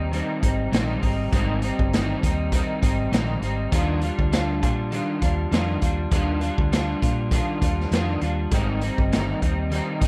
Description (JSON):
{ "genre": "indie pop, bedroom pop", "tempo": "100 BPM", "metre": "4/4", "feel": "swing 55% on 16ths", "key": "Eb major", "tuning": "A4 = 439 Hz", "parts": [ { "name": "electric guitar at the edge of break-up", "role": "accompaniment", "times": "0.0-10.1 s", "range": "Ab2 to F4", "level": "-28 LUFS", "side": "equal", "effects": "analog chorus, warbly pitch drift" }, { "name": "vintage muted fingered electric bass", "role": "bass", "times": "0.0-10.1 s", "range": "G1 to Bb2", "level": "-28 LUFS", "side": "equal", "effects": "none" }, { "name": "raw garage drum kit", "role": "drums", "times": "0.1-10.1 s", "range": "hi-hat, kick drum, snare drum", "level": "-27 LUFS", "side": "equal", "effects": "none" } ], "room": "little or no reverb", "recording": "none", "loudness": "-23 LUFS", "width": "mono", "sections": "0.0-10.1 A section", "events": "none", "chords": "0.0 Abmaj7; 3.7 Ebmaj9; 8.5 Abmaj7", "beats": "0.13 0.73 | 1.33 1.93 2.52 3.12 | 3.72 4.32 4.92 5.52 | 6.12 6.72 7.32 7.92 | 8.52 9.12 9.72" }